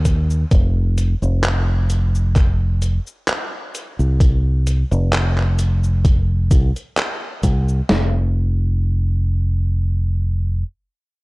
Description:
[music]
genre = vaporwave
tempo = 65 BPM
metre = 4/4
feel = swing 54% on 16ths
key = unclear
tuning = A4 = 442 Hz
[part]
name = fingered electric bass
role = bass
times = 0.0-10.6 s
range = F1 to Eb2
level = -16 LUFS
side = equal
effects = none
[part]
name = detuned 8-bit digital drum machine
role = drums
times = 0.1-8.1 s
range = hi-hat, kick drum, snare drum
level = -15 LUFS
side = equal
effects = none
[part]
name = detuned 8-bit digital drum machine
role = drums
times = 0.1-7.9 s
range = cabasa, handclaps, hi-hat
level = -25 LUFS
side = equal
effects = none
[sound]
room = little or no reverb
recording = dark, warm production, cassette tape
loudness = -16 LUFS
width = side -24 dB against mid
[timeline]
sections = 0.0-7.9 A section; 7.9-11.2 B section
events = none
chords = none

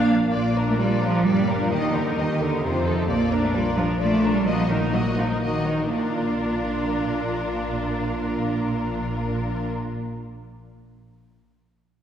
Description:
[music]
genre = quick classical-period movement for string orchestra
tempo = 117-133 BPM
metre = 3/4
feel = rubato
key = Bb major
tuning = A4 = 440 Hz
[part]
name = warm studio violin section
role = melody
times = 0.0-9.7 s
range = A4 to F5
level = -30 LUFS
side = left 4 dB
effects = none
[part]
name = rich studio viola section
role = accompaniment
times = 0.0-9.7 s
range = Bb3 to Eb4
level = -28 LUFS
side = right 1 dB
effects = none
[part]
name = warm studio cello section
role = bass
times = 0.0-9.7 s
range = Bb2 to Bb3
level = -24 LUFS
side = right 1 dB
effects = none
[part]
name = warm studio double bass section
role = bass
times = 0.0-9.7 s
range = G1 to F2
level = -28 LUFS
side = right 1 dB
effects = none
[part]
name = warm studio violin section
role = second line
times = 0.3-9.7 s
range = D4 to Bb4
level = -32 LUFS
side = left 2 dB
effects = none
[sound]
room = wet concert hall reverb, RT60 2.2 s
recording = recorded in a church or concert hall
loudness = -21 LUFS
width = side -9 dB against mid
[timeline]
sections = 0.3-5.9 A section; 5.9-8.9 B section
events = slowing down 2.4-5.9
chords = 0.3 Bb; 1.3 Gm; 1.7 Eb; 2.6 F7; 3.1 Bb; 4.5 Ebm/Bb; 5.9 Bb

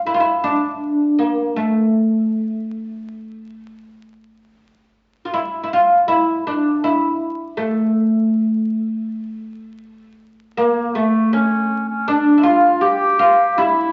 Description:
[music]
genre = arabic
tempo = 80 BPM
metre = 4/4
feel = straight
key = A maqam hijaz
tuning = A4 = 441 Hz
[part]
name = oud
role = melody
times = 0.0-13.9 s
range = A3 to G4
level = -18 LUFS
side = equal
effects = none
[part]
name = clear clarinet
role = second line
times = 10.6-13.9 s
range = A3 to G4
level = -22 LUFS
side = equal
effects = none
[sound]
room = wet large studio reverb, RT60 1.2 s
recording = very old 78 rpm record, vinyl crackle, nothing above 7.8 kHz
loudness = -18 LUFS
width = mono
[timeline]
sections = 0.0-10.6 A section; 10.6-13.9 B section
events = none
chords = none

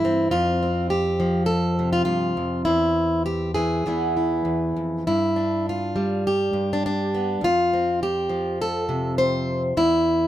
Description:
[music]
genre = folk, solo fingerstyle acoustic guitar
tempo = 102 BPM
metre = 4/4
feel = rubato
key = unclear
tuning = A4 = 440 Hz
[part]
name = fingerpicked plugged-in steel-string acoustic guitar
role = solo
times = 0.0-10.3 s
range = E2 to C5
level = -20 LUFS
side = equal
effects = none
[sound]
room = moderate studio reverb, RT60 0.6 s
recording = minimal, uncompressed stereo recording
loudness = -20 LUFS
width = side -12 dB against mid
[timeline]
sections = 0.0-10.3 A section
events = none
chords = 0.3 F5; 2.7 Eaug; 3.9 E; 5.1 G5; 7.4 F; 9.8 N.C.

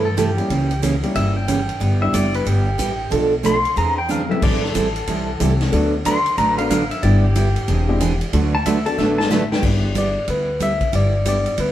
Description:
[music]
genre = country, western swing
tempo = 184 BPM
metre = 4/4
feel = swing 63% on 8ths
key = G major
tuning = A4 = 440 Hz
[part]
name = pedal steel guitar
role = second line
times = 0.0-9.6 s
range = G4 to C6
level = -23 LUFS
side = left 1 dB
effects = none
[part]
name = picked steel-string acoustic guitar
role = accompaniment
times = 0.0-11.7 s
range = B2 to B4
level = -22 LUFS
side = right 3 dB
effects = none
[part]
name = upright bass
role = bass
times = 0.0-11.7 s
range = E1 to G2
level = -21 LUFS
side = left 1 dB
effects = none
[part]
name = swinging big-band drum kit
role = drums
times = 0.2-11.7 s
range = crash cymbal, hi-hat, kick drum, ride cymbal, snare drum, toms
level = -25 LUFS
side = left 1 dB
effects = none
[part]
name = warm upright piano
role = accompaniment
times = 0.4-11.4 s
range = G3 to B4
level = -25 LUFS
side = left 2 dB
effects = none
[part]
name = barky tine electric piano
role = melody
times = 10.0-11.7 s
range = B4 to E5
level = -21 LUFS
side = left 2 dB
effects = overdrive
[sound]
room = moderate stone room reverb, RT60 1.3 s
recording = band playing live in one room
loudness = -16 LUFS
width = side -12 dB against mid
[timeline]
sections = 0.0-9.6 A section; 9.6-11.7 A section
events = pedal steel guitar solo 0.0-9.6; drum fill 4.1-4.4, 9.0-9.6; tine electric piano solo 9.6-11.7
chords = 0.0 C6; 0.5 C#dim7; 1.8 G6; 3.1 Bm7b5; 3.8 E7alt; 4.4 Am7; 5.7 D6; 7.0 G6; 7.7 E7alt; 8.3 D6; 9.6 G6

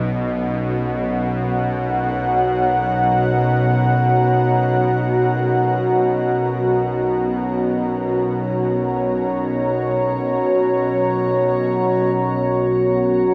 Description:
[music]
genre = dark ambient drone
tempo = free time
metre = none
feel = none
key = unclear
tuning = A4 = 439 Hz
[part]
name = dark analog pad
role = sustained chords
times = 0.1-13.3 s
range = B3 to A#5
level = -21 LUFS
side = equal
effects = chorus, shimmer reverb
[part]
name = bowed-like drone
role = drone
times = 0.0-13.3 s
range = B1 to B2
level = -23 LUFS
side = equal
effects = built-in reverb
[sound]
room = wet huge ambient reverb, RT60 7.4 s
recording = none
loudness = -19 LUFS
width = mono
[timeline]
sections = 0.0-12.1 A section; 12.1-13.3 B section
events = none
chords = 0.0 F#

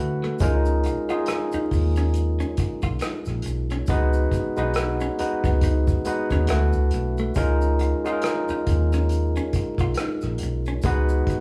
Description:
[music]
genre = R&B, neo-soul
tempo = 69 BPM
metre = 4/4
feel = swing 57% on 16ths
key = Db mixolydian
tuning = A4 = 440 Hz
[part]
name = semi-hollow electric guitar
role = second line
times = 0.0-11.3 s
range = A3 to F4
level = -36 LUFS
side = equal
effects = none
[part]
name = barky tine electric piano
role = accompaniment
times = 0.0-11.4 s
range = Ab3 to B4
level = -28 LUFS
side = equal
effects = overdrive
[part]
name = vintage muted fingered electric bass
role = bass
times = 0.0-11.2 s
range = Bb1 to D3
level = -25 LUFS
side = equal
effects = none
[part]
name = unplugged drum kit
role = drums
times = 0.2-11.4 s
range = hi-hat, kick drum, rim click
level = -29 LUFS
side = equal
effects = none
[part]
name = tube shaker and finger snaps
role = percussion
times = 0.4-11.4 s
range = none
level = -48 LUFS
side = equal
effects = none
[sound]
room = moderate studio reverb, RT60 0.9 s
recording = band playing live in one room, vinyl crackle, small room ambience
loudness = -23 LUFS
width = mono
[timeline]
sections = 0.0-11.4 A section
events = none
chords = 0.4 Db69; 3.9 Cb6; 6.5 D69; 7.4 Db69; 10.8 Cb6

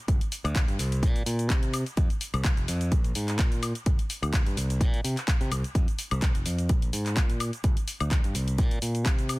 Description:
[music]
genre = filtered disco house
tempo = 127 BPM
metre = 4/4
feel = swing 54% on 16ths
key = unclear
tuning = A4 = 440 Hz
[part]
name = modern bright fingered electric bass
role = bass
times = 0.1-9.4 s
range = F1 to C3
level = -29 LUFS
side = equal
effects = sidechain pumping
[part]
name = electronic kick drum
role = drums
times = 0.1-9.2 s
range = none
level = -24 LUFS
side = equal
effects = none
[part]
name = house drum kit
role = drums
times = 0.1-9.4 s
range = cabasa, handclaps, hi-hat, woodblock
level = -33 LUFS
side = left 2 dB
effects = sidechain pumping on hats, sidechain pumping on perc, sidechain pumping on cymbals
[sound]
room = little or no reverb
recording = dense, heavily limited modern master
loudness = -24 LUFS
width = side -21 dB against mid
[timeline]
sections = 0.0-9.4 A section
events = none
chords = none

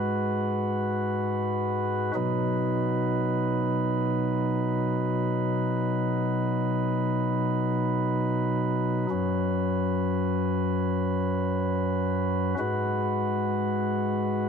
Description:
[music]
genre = hip hop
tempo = free time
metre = none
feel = none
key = B major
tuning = A4 = 440 Hz
[part]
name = chamber organ, flutes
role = solo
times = 0.0-14.5 s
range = F#2 to B4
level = -24 LUFS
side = equal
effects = ping-pong delay
[sound]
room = moderate lush hall reverb, RT60 3.0 s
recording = none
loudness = -24 LUFS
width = side -6 dB against mid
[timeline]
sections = 0.0-2.1 A section; 2.1-14.5 B section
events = none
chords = 0.0 G#m7; 2.1 B; 9.1 F#sus4; 12.6 G#m7

